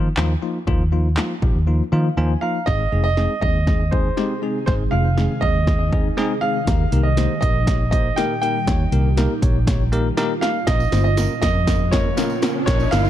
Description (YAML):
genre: dance-pop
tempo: 120 BPM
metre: 4/4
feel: straight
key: Ab major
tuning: A4 = 440 Hz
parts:
  - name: bell-like tine electric piano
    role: accompaniment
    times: 0.0-13.1 s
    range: F3 to Bb5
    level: -25 LUFS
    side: left 3 dB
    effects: medium stereo tremolo, sidechain pumping
  - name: vintage muted fingered electric bass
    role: bass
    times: 0.0-13.1 s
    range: F1 to Eb3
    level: -20 LUFS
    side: equal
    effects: sidechain pumping
  - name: punchy analog drum machine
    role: drums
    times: 0.2-13.0 s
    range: handclaps, hi-hat, kick drum, snare drum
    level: -22 LUFS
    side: equal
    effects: none
  - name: clear concert grand piano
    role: melody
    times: 2.4-13.1 s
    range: C5 to G5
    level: -24 LUFS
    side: right 2 dB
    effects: ping-pong delay
  - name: ethereal airy pad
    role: sustained chords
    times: 3.4-13.1 s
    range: Bb2 to Ab4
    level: -28 LUFS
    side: right 2 dB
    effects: ensemble chorus, built-in reverb, phaser, sidechain pumping
  - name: riser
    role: sound effects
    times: 11.6-13.1 s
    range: none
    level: -27 LUFS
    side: right 3 dB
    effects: none
  - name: tambourine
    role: percussion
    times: 10.8-13.1 s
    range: none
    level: -40 LUFS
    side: right 9 dB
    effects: none
room: digital ambience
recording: dark, warm production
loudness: -17 LUFS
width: side -12 dB against mid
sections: 0.0-2.7 A section; 2.7-13.1 B section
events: silent gap 1.7-2.7; tine electric piano fill 1.7-2.7; build-up 2.7-13.1; drum fill 2.7-13.1; riser 11.6-13.1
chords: 0.0 Ebsus2; 2.7 Ab; 6.7 Eb; 10.7 Bbm